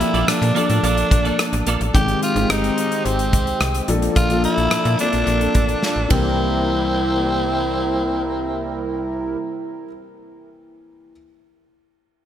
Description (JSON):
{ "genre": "1980s-style pop", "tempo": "108 BPM", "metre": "4/4", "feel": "straight", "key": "C mixolydian", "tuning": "A4 = 440 Hz", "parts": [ { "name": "raspy tenor saxophone", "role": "melody", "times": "0.0-9.4 s", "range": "C4 to G4", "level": "-23 LUFS", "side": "right 1 dB", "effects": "digital delay" }, { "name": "dark grand piano", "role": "accompaniment", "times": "0.0-11.1 s", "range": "Eb3 to A4", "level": "-24 LUFS", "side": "left 3 dB", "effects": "none" }, { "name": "warm analog pad", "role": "sustained chords", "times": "0.0-9.4 s", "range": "C3 to A4", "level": "-26 LUFS", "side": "equal", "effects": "chorus, tremolo" }, { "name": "twelve-string electric guitar", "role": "riff", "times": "0.0-1.9 s", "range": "Bb3 to D5", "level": "-26 LUFS", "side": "right 5 dB", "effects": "ensemble chorus, digital delay" }, { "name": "slap-like FM bass", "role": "bass", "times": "0.0-9.4 s", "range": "G1 to Bb2", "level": "-24 LUFS", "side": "equal", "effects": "none" }, { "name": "modern studio drum kit", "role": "drums", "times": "0.0-6.2 s", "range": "hi-hat, kick drum, ride cymbal, rim click, snare drum", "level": "-22 LUFS", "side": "equal", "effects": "gated reverb" }, { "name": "mellow synth brass", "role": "stabs", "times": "4.3-9.4 s", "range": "G3 to Bb4", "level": "-27 LUFS", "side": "right 2 dB", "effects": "chorus, digital delay" } ], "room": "wet lush hall reverb, RT60 2.2 s", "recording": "bright 1980s-style digital production", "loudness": "-17 LUFS", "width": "side -10 dB against mid", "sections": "0.0-6.4 A section; 6.4-8.6 B section", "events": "band accent 4.2-6.4; drum fill 5.8-6.4", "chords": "0.0 Bbmaj7; 1.9 Abmaj7; 3.9 Bbmaj7; 6.1 C7" }